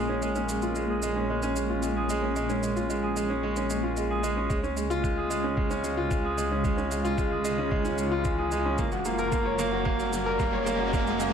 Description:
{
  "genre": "piano and strings electronica",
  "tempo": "112 BPM",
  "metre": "4/4",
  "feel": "straight",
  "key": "Bb minor",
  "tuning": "A4 = 436 Hz",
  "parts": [
    { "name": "granular cloud pad", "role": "sustained chords", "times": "0.0-11.3 s", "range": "Db3 to C5", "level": "-34 LUFS", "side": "left 2 dB", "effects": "built-in reverb, sidechain pumping" },
    { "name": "clear upright piano", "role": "riff", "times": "0.0-11.3 s", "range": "Ab3 to Db5", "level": "-27 LUFS", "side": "right 1 dB", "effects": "digital delay" },
    { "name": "dark detuned saw bass", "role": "bass", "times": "0.0-11.3 s", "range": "Gb1 to Db2", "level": "-35 LUFS", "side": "equal", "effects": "sidechain pumping" },
    { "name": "shaker", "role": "drums", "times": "0.2-11.3 s", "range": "none", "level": "-41 LUFS", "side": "right 4 dB", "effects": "none" },
    { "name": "electronic kick drum", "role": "drums", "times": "4.5-11.0 s", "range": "none", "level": "-30 LUFS", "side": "equal", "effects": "none" },
    { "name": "riser", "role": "sound effects", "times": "7.5-11.3 s", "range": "none", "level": "-36 LUFS", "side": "left 1 dB", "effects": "none" }
  ],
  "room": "wet recital hall reverb, RT60 1.4 s",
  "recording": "none",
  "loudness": "-25 LUFS",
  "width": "side -7 dB against mid",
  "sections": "0.0-11.3 A section",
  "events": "build-up 0.0-11.3; filter sweep on ambient pad 0.0-11.3; riser 7.5-11.3",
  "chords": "0.0 Bbm7; 4.5 Dbmaj7; 8.8 Gb"
}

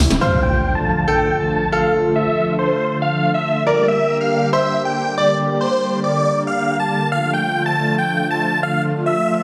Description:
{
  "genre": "trance",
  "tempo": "139 BPM",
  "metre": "4/4",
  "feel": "straight",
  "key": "D minor",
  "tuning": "A4 = 440 Hz",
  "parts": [
    { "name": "bright concert grand piano", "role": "second line", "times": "0.0-7.0 s", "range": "A4 to D5", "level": "-23 LUFS", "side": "equal", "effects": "digital delay" },
    { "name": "lush unison pad", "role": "sustained chords", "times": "0.0-9.4 s", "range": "C3 to G4", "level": "-23 LUFS", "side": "equal", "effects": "chorus" },
    { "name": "big supersaw lead", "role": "melody", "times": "0.2-9.4 s", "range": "C5 to A5", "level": "-22 LUFS", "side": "equal", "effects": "phaser, low-pass filter, delay" },
    { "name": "impact", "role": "sound effects", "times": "0.2-1.9 s", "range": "none", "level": "-25 LUFS", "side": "equal", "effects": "none" }
  ],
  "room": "wet digital room reverb, RT60 1.0 s, digital ambience",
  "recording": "none",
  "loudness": "-18 LUFS",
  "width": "mono",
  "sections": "0.2-9.4 A section",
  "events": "impact 0.2-1.9",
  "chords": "0.2 Dm; 3.7 Gm/D; 7.1 Dm"
}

